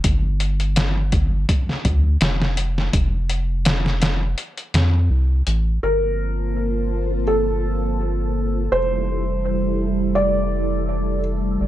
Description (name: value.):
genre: trip hop.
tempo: 83 BPM.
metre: 4/4.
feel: swing 54% on 16ths.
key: G dorian.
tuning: A4 = 439 Hz.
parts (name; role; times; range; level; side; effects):
round analog bass; bass; 0.0-11.7 s; F1 to F2; -21 LUFS; equal; none.
trip hop sampler-style drum kit; drums; 0.0-5.7 s; hi-hat, kick drum, snare drum; -20 LUFS; equal; overdrive.
felt-muted upright piano; melody; 5.8-11.2 s; A4 to D5; -24 LUFS; right 1 dB; vintage 12-bit sampler grit, dub echo.
string machine, cellos; sustained chords; 5.8-11.7 s; G3 to A5; -25 LUFS; equal; phaser, ensemble chorus.
room: little or no reverb.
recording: none.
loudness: -18 LUFS.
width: side -13 dB against mid.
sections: 0.0-5.8 A section; 5.8-11.7 B section.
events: none.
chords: 0.0 G5; 2.9 N.C.; 5.8 Gm11; 8.7 Fmaj9.